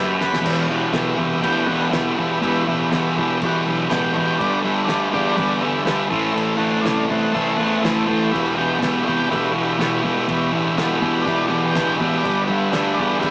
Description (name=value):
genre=garage rock duo or trio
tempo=122 BPM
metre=4/4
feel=straight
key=E minor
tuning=A4 = 441 Hz
part: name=overdriven combo organ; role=sustained chords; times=0.0-13.3 s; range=G4 to B5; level=-23 LUFS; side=equal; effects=none
part: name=thick fuzz guitar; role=riff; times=0.0-13.3 s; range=E2 to A3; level=-19 LUFS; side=equal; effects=distortion
part: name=fuzz picked electric bass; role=bass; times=0.0-13.3 s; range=E1 to E2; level=-29 LUFS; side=equal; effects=overdrive
part: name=cloth-damped thuddy drum kit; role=drums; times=0.2-13.3 s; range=crash cymbal, kick drum, snare drum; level=-28 LUFS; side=equal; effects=none
room=moderate small room reverb, RT60 0.5 s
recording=rough rehearsal-room recording, small speaker sound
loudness=-17 LUFS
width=side -22 dB against mid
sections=0.4-13.3 A section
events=transistor combo organ fill 0.0-0.4; drum fill 0.2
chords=0.4 Em; 4.4 G; 6.1 Am; 8.3 Em; 12.2 G